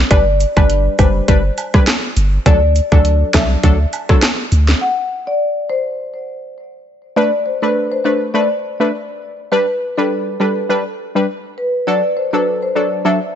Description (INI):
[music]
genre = dancehall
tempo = 102 BPM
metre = 4/4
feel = swing 56% on 16ths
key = unclear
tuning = A4 = 440 Hz
[part]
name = punchy sub bass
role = bass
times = 0.0-4.7 s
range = F#1 to D2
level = -14 LUFS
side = equal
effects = none
[part]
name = marimba with soft mallets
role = melody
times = 0.1-13.4 s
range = A4 to F#5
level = -19 LUFS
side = left 1 dB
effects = digital delay
[part]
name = synth brass stab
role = accompaniment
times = 0.1-13.2 s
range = F#3 to B4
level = -18 LUFS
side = left 1 dB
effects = chorus
[part]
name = island pop drum kit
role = drums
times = 0.1-4.8 s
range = hi-hat, kick drum, rim click, snare drum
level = -14 LUFS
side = equal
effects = none
[part]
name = woodblock and cabasa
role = percussion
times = 0.1-4.7 s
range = none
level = -27 LUFS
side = right 6 dB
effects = none
[sound]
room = little or no reverb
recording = nothing above 7.9 kHz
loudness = -13 LUFS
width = side -9 dB against mid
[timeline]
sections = 0.0-7.2 A section; 7.2-13.4 B section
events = break 4.8-7.2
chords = 0.1 G; 2.5 D; 7.2 Bm7; 9.5 G; 11.9 D